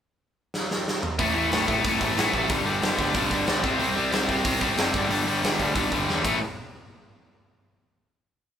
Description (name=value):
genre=punk rock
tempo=184 BPM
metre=4/4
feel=straight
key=unclear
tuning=A4 = 440 Hz
part: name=big rock drum kit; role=drums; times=0.5-6.3 s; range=crash cymbal, hi-hat, kick drum, snare drum, toms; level=-27 LUFS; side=equal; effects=none
part: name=overdriven semi-hollow guitar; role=riff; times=1.2-6.4 s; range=G2 to C4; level=-28 LUFS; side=right 5 dB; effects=none
part: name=tight distorted guitar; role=riff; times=1.2-6.4 s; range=G2 to C4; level=-25 LUFS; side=left 4 dB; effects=distortion
part: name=fuzz picked electric bass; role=bass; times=1.2-6.4 s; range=F#1 to E2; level=-33 LUFS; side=equal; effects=overdrive
room=light reverb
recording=band playing live in one room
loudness=-22 LUFS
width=side -8 dB against mid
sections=0.0-1.2 pickup bar; 1.2-6.4 verse; 6.4-7.7 final hit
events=drum fill 0.5-1.2, 6.1-6.4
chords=0.0 N.C.; 1.2 A5; 2.5 G; 3.6 C5; 4.9 G5; 6.2 A5; 6.4 N.C.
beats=0.21 0.54 0.87 | 1.19 1.52 1.85 2.17 | 2.50 2.83 3.15 3.48 | 3.80 4.13 4.46 4.78 | 5.11 5.43 5.76 6.08